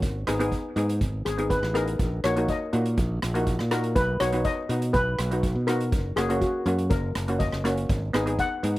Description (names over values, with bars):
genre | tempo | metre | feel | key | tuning
calypso | 122 BPM | 4/4 | straight | unclear | A4 = 439 Hz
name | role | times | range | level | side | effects
steel pan | accompaniment | 0.0-8.8 s | A#3 to G#4 | -28 LUFS | equal | none
modern bright fingered electric bass | bass | 0.0-8.8 s | F#1 to B2 | -27 LUFS | equal | none
street-band drum kit | drums | 0.0-8.8 s | hi-hat, kick drum, rim click | -29 LUFS | equal | none
steel pan | melody | 1.3-8.8 s | F#4 to F#5 | -28 LUFS | left 2 dB | slapback echo
room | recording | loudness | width
little or no reverb | recorded outdoors, with no room sound | -23 LUFS | side -17 dB against mid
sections
0.0-8.8 A section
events
steel pan solo 0.0-8.8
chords
0.0 G#m; 2.0 D#m/A#; 4.0 B; 5.9 F#; 7.9 G#m